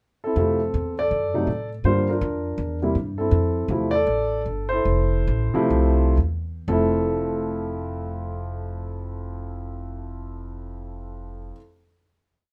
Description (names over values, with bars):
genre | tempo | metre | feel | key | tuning
jazz piano trio | 114-163 BPM | 4/4 | swing 64% on 8ths | F major | A4 = 438 Hz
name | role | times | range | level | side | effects
warm grand piano | melody | 0.2-11.6 s | F2 to D5 | -26 LUFS | equal | none
upright bass | bass | 0.4-11.5 s | F1 to A2 | -28 LUFS | equal | none
room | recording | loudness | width
light reverb | none | -23 LUFS | mono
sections
0.0-0.4 pickup bar; 0.4-6.7 A section; 6.7-10.9 final chord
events
slowing down 3.3-6.7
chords
0.4 Fmaj7; 1.1 F#m; 1.8 Gm7; 2.6 C7; 3.3 Fmaj7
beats
0.00 | 0.37 0.74 1.11 1.48 | 1.85 2.22 2.59 2.95 | 3.32 3.69 4.07 4.45 | 4.85 5.27 5.71 6.18 | 6.68 7.21 7.74 8.26 | 8.79 9.31 9.84 10.37